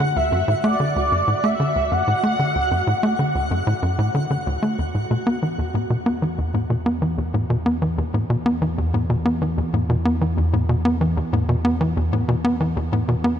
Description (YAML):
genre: ambient, sequencer-driven space music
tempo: 94 BPM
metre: 4/4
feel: straight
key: unclear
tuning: A4 = 439 Hz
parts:
  - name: mellow horn-like synth lead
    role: melody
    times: 0.0-3.8 s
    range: D5 to F#5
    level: -23 LUFS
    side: equal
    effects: phaser, ensemble chorus, ping-pong delay
  - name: tight sequencer bass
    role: riff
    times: 0.0-13.4 s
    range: D2 to B3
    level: -20 LUFS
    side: equal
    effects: ping-pong delay
  - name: twinkling granular texture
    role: texture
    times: 0.0-4.8 s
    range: F#4 to F#5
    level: -32 LUFS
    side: equal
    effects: built-in reverb
room: moderate huge ambient reverb, RT60 8.2 s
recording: nothing above 10.4 kHz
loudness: -18 LUFS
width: side -9 dB against mid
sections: 0.0-4.8 A section; 4.8-13.4 B section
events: none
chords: 0.0 D; 4.8 E5